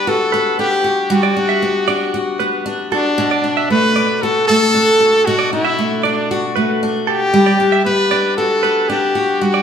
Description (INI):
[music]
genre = pop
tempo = 116 BPM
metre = 4/4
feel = straight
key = unclear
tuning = A4 = 441 Hz
[part]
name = bright trumpet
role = melody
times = 0.0-9.6 s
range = D4 to B4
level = -16 LUFS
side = left 1 dB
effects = none
[part]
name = picked steel-string acoustic guitar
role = accompaniment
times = 0.0-9.6 s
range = B2 to F#4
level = -17 LUFS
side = left 1 dB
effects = none
[part]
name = direct-recorded clean electric guitar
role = arpeggios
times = 0.0-9.6 s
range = A4 to E5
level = -21 LUFS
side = right 6 dB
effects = none
[sound]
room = wet large studio reverb, RT60 1.4 s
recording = band playing live in one room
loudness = -13 LUFS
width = side -7 dB against mid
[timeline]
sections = 0.0-9.6 A section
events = none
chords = 0.0 Gmaj7; 3.2 Bm7; 7.3 Gmaj7